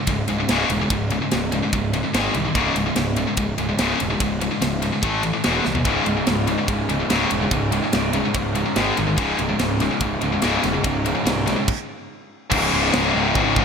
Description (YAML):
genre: heavy metal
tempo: 145 BPM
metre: 4/4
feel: straight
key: C# minor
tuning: A4 = 436 Hz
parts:
  - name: scooped high-gain guitar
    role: riff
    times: 0.0-13.6 s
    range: C#2 to A3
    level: -25 LUFS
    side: right 9 dB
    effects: distortion
  - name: tight distorted guitar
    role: riff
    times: 0.0-13.6 s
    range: C#2 to A3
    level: -23 LUFS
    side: left 8 dB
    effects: distortion
  - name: fuzz picked electric bass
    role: bass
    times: 0.1-13.6 s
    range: C#1 to B#1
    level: -26 LUFS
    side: right 1 dB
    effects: overdrive
  - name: tight metal drum kit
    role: drums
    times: 0.1-13.6 s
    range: crash cymbal, kick drum, ride cymbal, snare drum, toms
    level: -25 LUFS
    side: right 1 dB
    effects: gated reverb
  - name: overdriven electric guitar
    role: riff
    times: 5.9-13.6 s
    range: C#2 to G#3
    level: -25 LUFS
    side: left 1 dB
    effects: none
room: moderate lush hall reverb, RT60 2.0 s, small room ambience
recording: bright 1980s-style digital production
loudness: -18 LUFS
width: side -6 dB against mid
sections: 0.0-12.5 A section; 12.5-13.6 B section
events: drum fill 5.6; stop 11.7-12.5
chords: 0.0 C#5; 2.1 G#5; 2.5 C#5; 5.0 A5; 5.4 E5; 5.9 C#5; 8.8 G#5; 9.2 C#5; 11.7 N.C.; 12.5 C#5